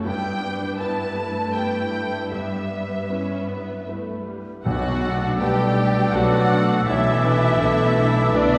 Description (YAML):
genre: cinematic, emotional film score for orchestra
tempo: 79 BPM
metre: 3/4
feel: uneven beats, rubato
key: B minor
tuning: A4 = 440 Hz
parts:
  - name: warm symphonic violin section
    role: second line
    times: 0.0-8.6 s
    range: G4 to G5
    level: -30 LUFS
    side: equal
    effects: none
  - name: bright concert grand piano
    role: accompaniment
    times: 0.0-8.6 s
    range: B1 to B4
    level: -29 LUFS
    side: equal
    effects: none
  - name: rich symphonic viola section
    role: accompaniment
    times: 0.0-8.6 s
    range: G3 to E4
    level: -32 LUFS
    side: equal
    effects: none
  - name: rich symphonic cello section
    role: bass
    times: 0.0-8.6 s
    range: G2 to B2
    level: -29 LUFS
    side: equal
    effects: none
  - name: warm symphonic violin section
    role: melody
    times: 0.1-8.6 s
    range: D4 to A5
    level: -32 LUFS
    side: equal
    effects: none
  - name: mellow oboe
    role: second line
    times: 4.6-8.6 s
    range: A4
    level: -32 LUFS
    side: equal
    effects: none
  - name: hollow small flute group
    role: second line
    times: 4.7-8.6 s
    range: D6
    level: -34 LUFS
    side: equal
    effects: none
  - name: warm French horn section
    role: sustained chords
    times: 4.7-8.6 s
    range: D3 to G3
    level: -28 LUFS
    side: equal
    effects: none
  - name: rich symphonic double bass section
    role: bass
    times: 4.7-8.6 s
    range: B1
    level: -30 LUFS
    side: equal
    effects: none
  - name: timpani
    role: percussion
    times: 4.7-5.7 s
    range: B2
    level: -32 LUFS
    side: equal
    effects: none
  - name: warm clarinet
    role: second line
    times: 5.4-8.6 s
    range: A4 to D5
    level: -30 LUFS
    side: equal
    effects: none
room: wet scoring stage reverb, RT60 1.8 s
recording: heard from further back in the room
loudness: -22 LUFS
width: mono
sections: 0.0-4.7 A section; 4.7-8.6 A section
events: none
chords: 0.1 Em/G; 4.7 Bm7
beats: | 0.05 0.79 1.54 | 2.32 3.10 3.88 | 4.66 5.40 6.14 | 6.87 7.61 8.35